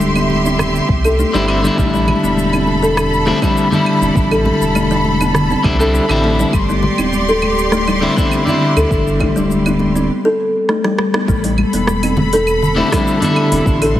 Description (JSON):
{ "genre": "organic downtempo", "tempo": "101 BPM", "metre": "4/4", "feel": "straight", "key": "A minor", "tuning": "A4 = 440 Hz", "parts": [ { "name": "electric guitar at the edge of break-up", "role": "accompaniment", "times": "0.0-14.0 s", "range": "D3 to E4", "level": "-17 LUFS", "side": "left 1 dB", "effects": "vibrato effect, sidechain pumping, tape echo" }, { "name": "clear symphonic string section", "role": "sustained chords", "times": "0.0-14.0 s", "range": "G4 to C6", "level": "-20 LUFS", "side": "equal", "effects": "sidechain pumping" }, { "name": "warm sub bass", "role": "bass", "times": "0.0-14.0 s", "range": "D1 to D2", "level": "-20 LUFS", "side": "equal", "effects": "none" }, { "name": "afro-pop drum kit", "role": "drums", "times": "0.0-13.9 s", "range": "claves, hi-hat, rim click, shaker", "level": "-23 LUFS", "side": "right 2 dB", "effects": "studio reverb" }, { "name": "congas and bongos", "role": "percussion", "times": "0.0-14.0 s", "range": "none", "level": "-23 LUFS", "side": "left 1 dB", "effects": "none" }, { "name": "kalimba", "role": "arpeggios", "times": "0.2-13.9 s", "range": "G3 to A4", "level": "-17 LUFS", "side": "left 1 dB", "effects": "tape echo" }, { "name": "electronic kick drum", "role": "drums", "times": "0.9-14.0 s", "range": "none", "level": "-18 LUFS", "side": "equal", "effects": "studio reverb" } ], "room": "light reverb", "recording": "heavily compressed radio sound", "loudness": "-12 LUFS", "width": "side -12 dB against mid", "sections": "0.0-11.3 A section; 11.3-14.0 B section", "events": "drum fill 10.7-11.3; band accent 11.1", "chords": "0.0 Gsus4; 1.8 Amadd9; 6.5 Gsus4; 11.3 Amadd9" }